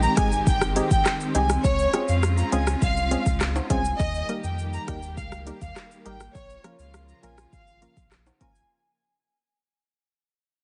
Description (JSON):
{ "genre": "dancehall", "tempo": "102 BPM", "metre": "4/4", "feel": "straight", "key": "Bb dorian", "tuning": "A4 = 439 Hz", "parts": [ { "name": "warm studio violin section", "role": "melody", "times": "0.0-8.5 s", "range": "Db5 to Bb5", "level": "-30 LUFS", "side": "equal", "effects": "delay" }, { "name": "rich symphonic string section", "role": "sustained chords", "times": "0.0-8.7 s", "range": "Db3 to G4", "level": "-34 LUFS", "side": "equal", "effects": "sidechain pumping" }, { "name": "saturated sub bass", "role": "bass", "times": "0.0-8.6 s", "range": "G1 to F2", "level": "-29 LUFS", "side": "equal", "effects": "none" }, { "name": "afro-pop drum kit", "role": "drums", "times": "0.0-8.7 s", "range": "handclaps, hi-hat, kick drum, rim click, shaker", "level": "-28 LUFS", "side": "equal", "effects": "none" }, { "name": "egg shaker and timbales", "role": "percussion", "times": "0.0-8.7 s", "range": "none", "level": "-40 LUFS", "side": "equal", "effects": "none" }, { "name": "wavetable chord stab", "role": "accompaniment", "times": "0.2-8.5 s", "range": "F3 to Bb4", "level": "-31 LUFS", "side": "equal", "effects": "none" } ], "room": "light reverb, studio reverb", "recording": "heavily compressed radio sound, multiband compression, nothing above 10.3 kHz", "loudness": "-24 LUFS", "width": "mono", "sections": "0.0-8.7 A section", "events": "fade-out 0.0-8.7", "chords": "0.0 Abmaj7; 1.6 Dbmaj7; 4.0 Eb; 6.3 Bbm", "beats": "0.47 1.06 | 1.64 2.23 2.82 3.41 | 4.00 4.58 5.17 5.76 | 6.35 6.94 7.53 8.12" }